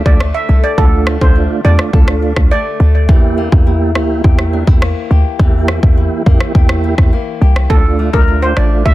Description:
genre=dancehall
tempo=104 BPM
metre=4/4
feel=straight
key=D minor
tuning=A4 = 439 Hz
part: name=mellow tonewheel organ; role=accompaniment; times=0.0-8.9 s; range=A3 to G4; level=-19 LUFS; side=right 5 dB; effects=chorus vibrato, fast rotary speaker, sidechain pumping
part: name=flamenco guitar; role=arpeggios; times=0.0-8.9 s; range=D3 to A4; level=-23 LUFS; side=left 9 dB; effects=none
part: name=steel pan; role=melody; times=0.1-2.9, 7.7-8.9 s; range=A4 to E5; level=-18 LUFS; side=right 2 dB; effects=digital delay
part: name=short 808-style bass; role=bass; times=0.1-8.9 s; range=A1 to F2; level=-12 LUFS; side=equal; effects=none
part: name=afro-pop drum kit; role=drums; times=0.1-8.9 s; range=kick drum, rim click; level=-12 LUFS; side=equal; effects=soft clipping on snare
room=little or no reverb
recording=dense, heavily limited modern master, faint mains hum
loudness=-9 LUFS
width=side -16 dB against mid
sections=0.0-8.9 A section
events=break 0.0-7.7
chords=0.0 Dm; 3.1 Edim; 7.7 Dm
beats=0.20 | 0.78 1.36 1.93 2.51 | 3.09 3.66 4.24 4.82 | 5.39 5.97 6.55 7.13 | 7.70 8.28 8.86

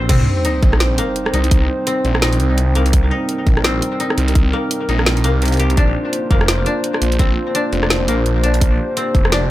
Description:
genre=half-time drum and bass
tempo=169 BPM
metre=4/4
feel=swing 59% on 16ths, half-time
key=C minor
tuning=A4 = 440 Hz
part: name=dark analog pad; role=sustained chords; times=0.0-9.5 s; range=G3 to C5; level=-21 LUFS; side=right 1 dB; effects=chorus, sidechain pumping
part: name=koto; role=arpeggios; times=0.0-9.5 s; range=C3 to C5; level=-23 LUFS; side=left 3 dB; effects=dub echo
part: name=phased detuned saw bass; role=bass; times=0.0-9.5 s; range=F1 to C2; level=-17 LUFS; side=equal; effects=phaser
part: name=drum and bass drum kit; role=drums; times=0.1-9.4 s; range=crash cymbal, hi-hat, rim click, snare drum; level=-20 LUFS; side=equal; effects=none
part: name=electronic kick drum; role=drums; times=0.1-9.2 s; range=none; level=-14 LUFS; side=equal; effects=none
part: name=sub drop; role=sound effects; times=0.1-1.5 s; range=none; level=-22 LUFS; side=equal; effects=none
room=light reverb, digital ambience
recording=echo-heavy mix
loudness=-14 LUFS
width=side -15 dB against mid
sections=0.1-9.5 A section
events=drop 0.1-9.5; impact 0.1-1.5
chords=0.1 Cm; 5.8 Bbadd9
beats=| 0.09 0.45 0.80 1.16 | 1.51 1.87 2.22 2.58 | 2.93 3.29 3.64 4.00 | 4.35 4.71 5.06 5.42 | 5.77 6.13 6.48 6.84 | 7.19 7.55 7.90 8.26 | 8.61 8.97 9.32

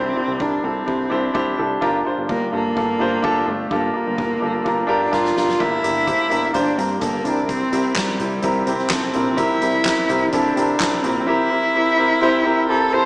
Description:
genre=piano-driven pop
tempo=127 BPM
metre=4/4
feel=straight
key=unclear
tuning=A4 = 440 Hz
part: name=warm cello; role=melody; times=0.0-13.1 s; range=G3 to C5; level=-20 LUFS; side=equal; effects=none
part: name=clear baby grand piano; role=accompaniment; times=0.0-13.1 s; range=G2 to D5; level=-20 LUFS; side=equal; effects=none
part: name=fat analog bass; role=bass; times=0.0-11.2 s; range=G1 to C3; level=-28 LUFS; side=equal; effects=none
part: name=soft-mallet drum kit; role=drums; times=0.4-11.1 s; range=crash cymbal, handclaps, hi-hat, kick drum, snare drum, toms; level=-28 LUFS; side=equal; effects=none
room=moderate large studio reverb, RT60 1.3 s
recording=band playing live in one room, small speaker sound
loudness=-17 LUFS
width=side -24 dB against mid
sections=0.0-5.6 A section; 5.6-13.1 B section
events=drum fill 5.1-5.6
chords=0.0 Cadd9; 1.8 Gm7; 5.6 Gm; 7.3 C7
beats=0.40 0.87 1.34 | 1.82 2.29 2.76 3.24 | 3.71 4.18 4.66 5.13 | 5.60 6.08 6.55 7.02 | 7.49 7.97 8.44 8.91 | 9.39 9.86 10.33 10.80 | 11.28 11.75 12.22 12.70

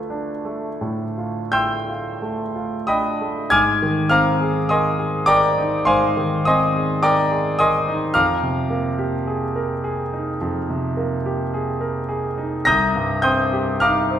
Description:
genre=classical, impressionist solo piano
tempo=40-54 BPM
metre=4/4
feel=rubato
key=Ab lydian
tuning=A4 = 441 Hz
part: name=bright concert grand piano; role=solo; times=0.0-14.2 s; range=C2 to Bb6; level=-18 LUFS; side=equal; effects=none
room=wet recital hall reverb, RT60 1.3 s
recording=heard from further back in the room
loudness=-18 LUFS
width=side -10 dB against mid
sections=0.0-3.5 A section; 3.5-14.2 B section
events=none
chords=0.0 Dm6; 3.5 Abadd9; 8.1 Fm11; 12.7 Cm7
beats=0.81 2.22 | 3.52 4.70 5.87 7.03 | 8.14 9.25 10.40 11.52 | 12.66 13.81

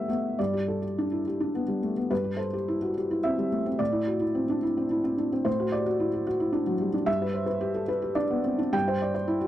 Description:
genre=neoclassical minimalist piano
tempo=98-113 BPM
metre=3/4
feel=rubato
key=G major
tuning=A4 = 440 Hz
part: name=felt-muted upright piano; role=solo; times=0.0-9.5 s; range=G2 to G5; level=-25 LUFS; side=equal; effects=none
room=little or no reverb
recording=dry, close 1970s-style studio recording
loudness=-25 LUFS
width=side -12 dB against mid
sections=0.4-9.5 A section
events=none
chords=0.4 G; 2.1 C/G; 3.8 Am; 5.5 Dadd9/A; 7.1 G; 8.7 C/G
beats=| 0.39 0.97 1.54 | 2.11 2.67 3.24 | 3.80 4.36 4.91 | 5.46 6.00 6.54 | 7.07 7.61 8.16 | 8.74 9.29

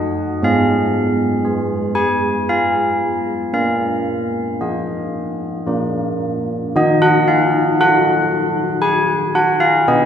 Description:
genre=classical, tune for church bells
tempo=58 BPM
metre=3/4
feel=straight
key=Eb minor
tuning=A4 = 439 Hz
part: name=old church bells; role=solo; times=0.0-10.1 s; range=Gb3 to Ab5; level=-15 LUFS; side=equal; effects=none
room=wet cathedral reverb, RT60 4.4 s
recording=heard from further back in the room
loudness=-15 LUFS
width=side -8 dB against mid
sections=0.0-6.7 A section; 6.7-10.1 B section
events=none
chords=0.0 N.C.; 3.5 Bbsus4; 5.7 Bb; 6.7 Ebm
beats=| 0.44 1.46 2.50 | 3.55 4.61 5.67 | 6.74 7.78 8.81 | 9.83

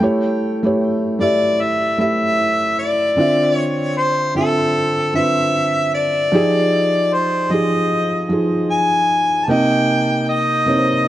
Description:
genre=R&B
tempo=76 BPM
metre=4/4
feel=swing 58% on 16ths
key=unclear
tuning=A4 = 441 Hz
part: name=felt-muted upright piano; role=accompaniment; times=0.0-11.1 s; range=C3 to E5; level=-18 LUFS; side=right 1 dB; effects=none
part: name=warm harmonica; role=melody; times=1.2-11.1 s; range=A4 to A5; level=-17 LUFS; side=left 1 dB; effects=digital delay
room=light reverb, small room ambience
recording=worn, warbling old tape, cassette tape, warbly pitch drift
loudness=-15 LUFS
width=side -13 dB against mid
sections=0.0-3.2 A section; 3.2-11.1 B section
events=none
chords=0.0 A7; 3.2 Dm9; 6.3 Fm9; 9.5 Cm7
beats=| 0.02 0.81 1.60 2.39 | 3.18 3.97 4.76 5.54 | 6.33 7.12 7.91 8.70 | 9.49 10.28 11.07

